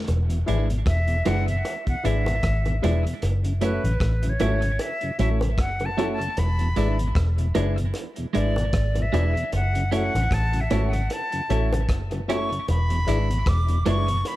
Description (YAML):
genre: roots reggae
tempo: 76 BPM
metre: 4/4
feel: swing 57% on 16ths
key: unclear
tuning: A4 = 441 Hz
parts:
  - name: vintage muted fingered electric bass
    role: bass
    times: 0.1-14.2 s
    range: E1 to A1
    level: -23 LUFS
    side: equal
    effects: none
  - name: crunchy breakbeat drum kit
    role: drums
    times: 0.1-14.4 s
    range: hi-hat, kick drum, rim click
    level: -30 LUFS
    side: equal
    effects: dub echo
  - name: bongos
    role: percussion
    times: 0.1-14.4 s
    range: none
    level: -32 LUFS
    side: right 2 dB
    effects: none
  - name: mellow tonewheel organ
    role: accompaniment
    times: 0.3-14.2 s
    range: E2 to F#4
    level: -32 LUFS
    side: left 1 dB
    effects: slow rotary speaker, dub echo
  - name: clean electric guitar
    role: accompaniment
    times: 0.5-14.1 s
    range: G#3 to E4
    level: -31 LUFS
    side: right 8 dB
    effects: tape echo
  - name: warm upright piano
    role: stabs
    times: 0.5-14.1 s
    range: E4 to D5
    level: -32 LUFS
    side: left 5 dB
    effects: none
  - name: silver concert flute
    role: melody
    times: 0.9-14.4 s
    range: B4 to D6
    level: -29 LUFS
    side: equal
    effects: tape echo
room: small room ambience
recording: echo-heavy mix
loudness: -21 LUFS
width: side -16 dB against mid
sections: 0.1-14.4 A section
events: flute solo 0.1-14.4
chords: 0.1 E7; 3.2 F#m7; 6.4 E7; 9.5 F#m7; 12.7 E7